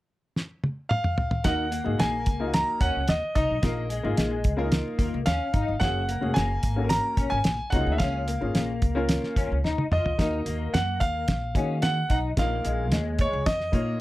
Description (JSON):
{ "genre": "uptempo 1960s-style soul", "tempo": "110 BPM", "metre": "4/4", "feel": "straight", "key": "Eb minor", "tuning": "A4 = 440 Hz", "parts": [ { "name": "cloth-damped thuddy drum kit", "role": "drums", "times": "0.4-13.9 s", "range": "hi-hat, kick drum, snare drum, toms", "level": "-25 LUFS", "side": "equal", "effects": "none" }, { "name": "bright baby grand piano", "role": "melody", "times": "0.9-14.0 s", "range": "Db5 to Bb5", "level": "-29 LUFS", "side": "right 1 dB", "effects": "none" }, { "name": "warm upright piano", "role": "accompaniment", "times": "1.4-14.0 s", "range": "Bb3 to Db5", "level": "-31 LUFS", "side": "left 2 dB", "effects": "none" }, { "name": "electric guitar through a small old amp", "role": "riff", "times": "1.4-13.9 s", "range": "Ab3 to Gb4", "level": "-32 LUFS", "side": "left 4 dB", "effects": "ensemble chorus" }, { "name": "upright bass", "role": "bass", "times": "1.5-14.0 s", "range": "F1 to Eb3", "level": "-29 LUFS", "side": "equal", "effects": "none" } ], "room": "moderate studio reverb, RT60 0.5 s", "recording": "none", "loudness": "-23 LUFS", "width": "side -16 dB against mid", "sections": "0.0-1.4 A section; 1.4-10.2 B section; 10.2-14.0 C section", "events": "drum fill 0.4-1.4, 9.6-10.2", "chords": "0.0 N.C.; 1.4 Ebm; 3.6 Bbsus4; 5.8 Gbadd9; 7.7 Db6; 10.2 Ebm; 12.4 Bbsus4", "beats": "0.36 0.90 | 1.45 2.00 2.54 3.09 | 3.63 4.18 4.72 5.27 | 5.82 6.36 6.91 7.46 | 8.00 8.55 9.09 9.64 | 10.19 10.73 11.28 11.83 | 12.37 12.92 13.46" }